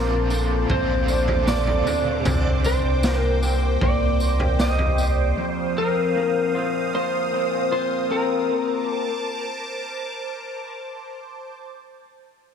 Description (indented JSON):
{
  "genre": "dream pop",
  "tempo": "77 BPM",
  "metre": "4/4",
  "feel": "straight",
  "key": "Bb major",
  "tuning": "A4 = 440 Hz",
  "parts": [
    { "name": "electric slide guitar", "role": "melody", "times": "0.0-10.8 s", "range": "Bb4 to Eb5", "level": "-25 LUFS", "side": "left 1 dB", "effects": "analog delay" },
    { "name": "overdriven electric guitar", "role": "accompaniment", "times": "0.0-2.8 s", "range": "Bb2 to F4", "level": "-30 LUFS", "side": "right 4 dB", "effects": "tremolo, ensemble chorus, analog delay" },
    { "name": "phased analog pad", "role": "sustained chords", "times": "0.0-11.6 s", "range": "C5 to Eb6", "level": "-29 LUFS", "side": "right 1 dB", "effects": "phaser, chorus" },
    { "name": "electric guitar through a small old amp", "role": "arpeggios", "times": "0.0-9.1 s", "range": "F2 to A4", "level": "-27 LUFS", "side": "left 2 dB", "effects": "lush chorus, analog delay" },
    { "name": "warm sub bass", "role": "bass", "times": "0.0-5.3 s", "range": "Bb1 to C2", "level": "-22 LUFS", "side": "equal", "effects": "none" },
    { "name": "raw garage drum kit", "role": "drums", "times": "0.3-5.2 s", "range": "kick drum, snare drum, tambourine, toms", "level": "-27 LUFS", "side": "equal", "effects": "analog delay" }
  ],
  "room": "light reverb",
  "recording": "echo-heavy mix",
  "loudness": "-20 LUFS",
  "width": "side -7 dB against mid",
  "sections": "0.0-11.6 A section",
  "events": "none",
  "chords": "0.0 Bbmaj9; 2.3 Cm9; 5.4 F7sus4; 8.5 Bbmaj9",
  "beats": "0.70 1.48 | 2.25 3.03 3.81 4.59 | 5.37 6.15 6.93 7.71 | 8.49 9.27 10.05 10.83"
}